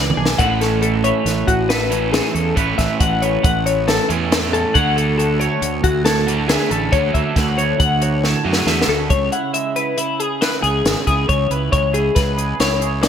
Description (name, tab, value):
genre	math rock and midwest emo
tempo	138 BPM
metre	5/4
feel	straight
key	A major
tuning	A4 = 440 Hz
part	twangy electric guitar	accompaniment	0.0-13.1 s	A2 to E5	-24 LUFS	right 13 dB	lush chorus
part	twelve-string electric guitar	arpeggios	0.0-13.1 s	E4 to F#5	-20 LUFS	left 5 dB	analog chorus
part	fuzz fingered electric bass	bass	0.0-13.1 s	G#1 to F#2	-22 LUFS	equal	overdrive
part	compact cocktail drum kit	drums	0.1-13.1 s	hi-hat, kick drum, snare drum, toms	-20 LUFS	equal	gated reverb
part	crunchy overdriven guitar	riff	0.4-9.1 s	A2 to F#4	-23 LUFS	right 3 dB	none
room	light reverb, small room ambience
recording	bright 1980s-style digital production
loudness	-15 LUFS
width	side -8 dB against mid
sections	0.4-9.1 A section; 9.1-13.1 B section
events	drum fill 0.0-0.4, 8.2-9.1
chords	0.4 A69; 4.7 Dmaj7; 9.1 C#m7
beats	| 0.39 0.82 1.26 1.70 2.13 | 2.57 3.00 3.44 3.88 4.31 | 4.75 5.18 5.62 6.06 6.49 | 6.93 7.36 7.80 8.23 8.67 | 9.11 9.54 9.98 10.41 10.85 | 11.29 11.72 12.16 12.60 13.03